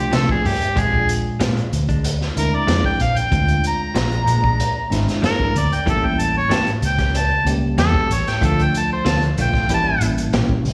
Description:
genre	straight-eighth soul blues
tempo	94 BPM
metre	4/4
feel	straight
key	unclear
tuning	A4 = 440 Hz
part	mellow harmonica	melody	0.0-10.0 s	G4 to Bb5	-23 LUFS	equal	overdrive, slapback echo
part	bell-like tine electric piano	accompaniment	0.0-10.6 s	F3 to G4	-27 LUFS	equal	phaser, slapback echo
part	direct-recorded clean electric guitar	stabs	0.1-10.5 s	E3 to G4	-31 LUFS	equal	slapback echo
part	vintage muted fingered electric bass	bass	0.1-10.7 s	Ab1 to C3	-23 LUFS	equal	none
part	crunchy breakbeat drum kit	drums	0.1-10.7 s	hi-hat, kick drum, snare drum	-26 LUFS	equal	none
room	light reverb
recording	live gig heard through the venue's PA, recital hall reverb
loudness	-19 LUFS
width	mono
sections	0.0-10.7 A section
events	harmonica solo 0.0-10.7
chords	0.0 Dm; 0.8 Bb7; 5.9 A7b9; 8.4 Dm; 9.7 A7b9

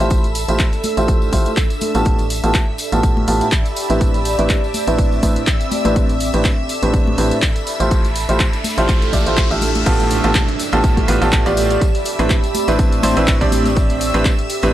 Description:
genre	piano house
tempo	123 BPM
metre	4/4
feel	swing 55% on 16ths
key	unclear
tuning	A4 = 440 Hz
part	string machine, violins	sustained chords	0.0-14.7 s	E5 to E6	-28 LUFS	equal	ensemble chorus, sidechain pumping
part	clear baby grand piano	riff	0.0-14.7 s	A2 to E5	-19 LUFS	right 1 dB	sidechain pumping, low-pass filter, tape echo
part	organ-like FM bass	bass	0.0-14.7 s	A1	-21 LUFS	equal	sidechain pumping
part	punchy analog drum machine	drums	0.0-14.7 s	crash cymbal, handclaps, hi-hat	-24 LUFS	equal	none
part	tambourine and congas	percussion	0.0-14.7 s	none	-28 LUFS	left 4 dB	none
part	ethereal airy pad	texture	0.0-14.7 s	C4 to B5	-23 LUFS	right 2 dB	ensemble chorus, built-in reverb, phaser, sidechain pumping
part	electronic kick drum	drums	0.1-14.4 s	none	-17 LUFS	equal	none
part	riser and downlifter	sound effects	7.5-13.8 s	none	-29 LUFS	left 1 dB	none
room	little or no reverb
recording	dry, gritty hardware recording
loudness	-14 LUFS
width	side -13 dB against mid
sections	0.0-9.9 A section; 9.9-14.7 B section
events	riser 7.5-9.9; drop 9.9-14.7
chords	0.0 Dm11/A; 4.0 Am11; 7.7 Dm11/A; 9.9 G9/A; 11.8 Cmaj9/A

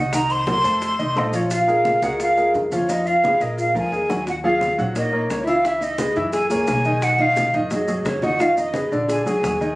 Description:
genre	Afro-Cuban jazz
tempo	174 BPM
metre	4/4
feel	straight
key	Bb minor, Eb minor from 4.3 s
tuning	A4 = 440 Hz
part	breathy mellow jazz flute	melody	0.0-9.7 s	Db5 to C6	-20 LUFS	equal	plate reverb
part	nylon-string guitar	second line	0.0-9.7 s	Db4 to C5	-27 LUFS	left 1 dB	none
part	warm baby grand piano	accompaniment	0.0-9.8 s	D3 to Gb5	-23 LUFS	equal	none
part	upright bass	bass	0.0-9.8 s	Bb1 to Gb2	-30 LUFS	equal	none
part	bongos	percussion	0.1-9.8 s	none	-32 LUFS	left 2 dB	none
part	congas	percussion	0.1-9.6 s	none	-32 LUFS	equal	none
part	maracas	percussion	0.1-9.8 s	none	-38 LUFS	right 2 dB	none
room	moderate small room reverb, RT60 0.5 s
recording	recorded on a phone in the room, studio reverb, compression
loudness	-18 LUFS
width	side -19 dB against mid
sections	0.0-4.3 A section; 4.3-9.8 B section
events	drum fill 3.2-4.3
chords	0.1 Cm7b5; 0.8 F7; 1.5 Bbm7; 2.9 Fdim; 3.6 Bb7; 4.3 Ebm11; 5.6 Dbm9; 6.3 Gb9; 7.0 B6; 8.4 Fm7b5; 9.1 Bb7alt

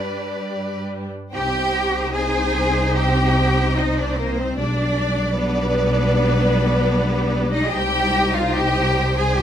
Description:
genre	classical, slow romantic movement for string orchestra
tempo	65-77 BPM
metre	4/4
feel	rubato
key	C minor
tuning	A4 = 439 Hz
part	rich chamber violin section	melody	0.0-9.4 s	C5 to D5	-28 LUFS	right 1 dB	none
part	rich symphonic violin section	second line	0.0-9.4 s	G4 to Ab5	-25 LUFS	left 2 dB	none
part	rich chamber viola section	accompaniment	0.0-9.4 s	F3 to F4	-25 LUFS	left 2 dB	none
part	clear chamber double bass section	bass	0.0-9.4 s	Ab1 to G2	-22 LUFS	right 1 dB	none
part	clear studio cello section	bass	0.0-9.4 s	Bb3 to B4	-24 LUFS	equal	none
room	little or no reverb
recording	close, detailed microphones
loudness	-17 LUFS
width	side -9 dB against mid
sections	0.0-1.3 A section; 1.3-9.4 B section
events	none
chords	0.0 G; 1.3 Cm; 4.6 G/B; 7.7 Cm

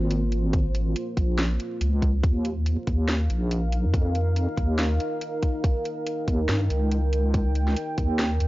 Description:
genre	deep dubstep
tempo	141 BPM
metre	4/4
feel	swing 59% on 16ths, half-time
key	unclear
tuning	A4 = 440 Hz
part	deep dark ambient pad	sustained chords	0.0-8.5 s	Bb3 to G5	-30 LUFS	equal	chorus, built-in reverb
part	deep soft wobble bass	bass	0.0-8.5 s	Ab1 to G2	-23 LUFS	equal	chorus, tube saturation
part	garage drum kit	drums	0.1-8.5 s	hi-hat, snare drum	-31 LUFS	equal	overdrive
part	electronic kick drum	drums	0.5-8.1 s	none	-24 LUFS	equal	overdrive
room	little or no reverb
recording	dry, gritty hardware recording, transformer saturation, vinyl crackle, nothing above 7.5 kHz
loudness	-22 LUFS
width	side -18 dB against mid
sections	0.0-8.5 A section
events	none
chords	0.0 Bbm; 2.2 Eb

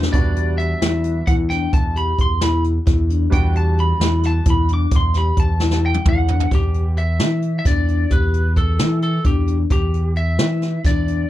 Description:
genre	progressive instrumental, band music in an uneven meter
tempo	263 BPM (eighths)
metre	7/8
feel	straight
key	E minor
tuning	A4 = 437 Hz
part	bright baby grand piano	accompaniment	0.0-6.5 s	G3 to F#4	-31 LUFS	right 6 dB	none
part	vibraphone with soft mallets	arpeggios	0.0-11.2 s	D4 to G4	-25 LUFS	left 7 dB	none
part	smooth gliding synth bass	bass	0.0-11.3 s	E2 to E3	-18 LUFS	equal	none
part	jazz brush drum kit	drums	0.0-11.2 s	hi-hat, kick drum, snare drum, toms	-20 LUFS	equal	none
part	lightly driven lead guitar	melody	0.1-11.3 s	G4 to D6	-25 LUFS	right 1 dB	none
room	little or no reverb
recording	none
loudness	-16 LUFS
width	side -14 dB against mid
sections	0.0-6.5 A section; 6.5-11.3 B section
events	lead electric guitar solo 0.0-6.5; drum fill 5.6-6.5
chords	0.0 Em7

